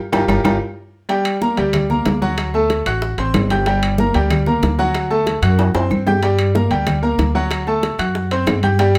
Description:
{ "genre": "latin, salsa", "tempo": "187 BPM", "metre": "4/4", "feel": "straight", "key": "G harmonic minor", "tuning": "A4 = 441 Hz", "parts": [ { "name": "bright grand piano", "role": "accompaniment", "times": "0.1-9.0 s", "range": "F#3 to G6", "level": "-21 LUFS", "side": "equal", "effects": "none" }, { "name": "upright bass", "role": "bass", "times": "0.1-9.0 s", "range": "G1 to G2", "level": "-22 LUFS", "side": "equal", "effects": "none" }, { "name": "bongos", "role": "percussion", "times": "0.1-9.0 s", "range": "none", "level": "-28 LUFS", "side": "equal", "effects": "none" }, { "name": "claves", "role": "percussion", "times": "0.1-9.0 s", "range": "none", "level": "-34 LUFS", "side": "equal", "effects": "none" }, { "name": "congas", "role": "percussion", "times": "0.1-9.0 s", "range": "none", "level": "-26 LUFS", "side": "equal", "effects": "none" }, { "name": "timbales", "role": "percussion", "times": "0.1-9.0 s", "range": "none", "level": "-28 LUFS", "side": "equal", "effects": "none" } ], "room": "moderate studio reverb, RT60 0.6 s", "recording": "none", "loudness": "-17 LUFS", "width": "mono", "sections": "0.0-1.1 A section; 1.1-9.0 B section", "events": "drum fill 0.0-1.1, 5.6-6.2; band accent 0.0-1.1", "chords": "0.0 Gm7; 1.1 Gm; 2.4 D7; 3.7 Gm; 4.9 D7; 6.2 Gm; 7.5 D7" }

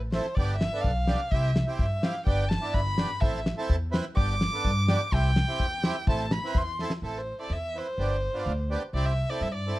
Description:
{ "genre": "klezmer", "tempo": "126 BPM", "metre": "2/4", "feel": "straight", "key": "A minor", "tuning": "A4 = 440 Hz", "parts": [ { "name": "upright bass", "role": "bass", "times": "0.0-9.7 s", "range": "G1 to G2", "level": "-28 LUFS", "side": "equal", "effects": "none" }, { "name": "dark violin", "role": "melody", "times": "0.1-9.8 s", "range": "A4 to D6", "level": "-32 LUFS", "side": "equal", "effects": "none" }, { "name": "accordion", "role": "accompaniment", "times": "0.1-9.8 s", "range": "B3 to B4", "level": "-33 LUFS", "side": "right 2 dB", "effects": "none" }, { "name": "damped 70s drum kit", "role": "drums", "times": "0.1-7.0 s", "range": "kick drum, snare drum", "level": "-27 LUFS", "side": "left 1 dB", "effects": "none" } ], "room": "light reverb", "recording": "dark, warm production", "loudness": "-25 LUFS", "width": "side -17 dB against mid", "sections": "0.0-7.0 A section; 7.0-9.8 B section", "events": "violin solo 0.0-7.0; drum fill 6.8", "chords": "0.4 G; 1.3 C; 2.3 G; 3.2 Am; 4.2 G; 5.1 C; 6.1 Am; 8.0 G; 8.9 C" }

